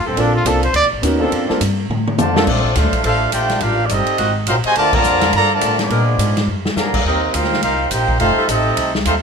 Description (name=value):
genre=jazz, big band swing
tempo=209 BPM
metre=4/4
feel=swing 60% on 8ths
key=Bb major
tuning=A4 = 440 Hz
part: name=warm trumpet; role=melody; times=0.0-0.9 s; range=C4 to D5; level=-17 LUFS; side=right 1 dB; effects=none
part: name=upright bass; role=bass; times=0.0-9.2 s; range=Eb1 to Bb2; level=-20 LUFS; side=equal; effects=none
part: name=warm saxophone section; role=sustained chords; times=0.1-8.5 s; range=D3 to Bb4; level=-26 LUFS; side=equal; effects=none
part: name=warm baby grand piano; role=accompaniment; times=0.2-2.5 s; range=Bb3 to Bb4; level=-19 LUFS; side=right 1 dB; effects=none
part: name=swinging big-band drum kit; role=drums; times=0.2-9.1 s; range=crash cymbal, hi-hat, kick drum, ride cymbal, snare drum, toms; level=-21 LUFS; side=left 1 dB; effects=none
part: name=clear trumpet section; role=melody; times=2.2-9.2 s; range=Cb4 to Bb5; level=-18 LUFS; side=equal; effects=none
part: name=muted trombone section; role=second line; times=2.2-9.1 s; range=C3 to G4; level=-22 LUFS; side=right 1 dB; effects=none
room=light reverb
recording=none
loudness=-14 LUFS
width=side -6 dB against mid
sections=0.0-2.5 A section; 2.5-9.2 B section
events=trumpet solo 0.0-2.5; drum fill 1.9-2.5, 6.5; band accent 4.9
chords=0.2 Bbmaj9; 3.6 Am7b5; 4.2 Ab13; 4.8 Gm11; 5.9 Bb7b9; 7.0 Eb6; 8.2 F9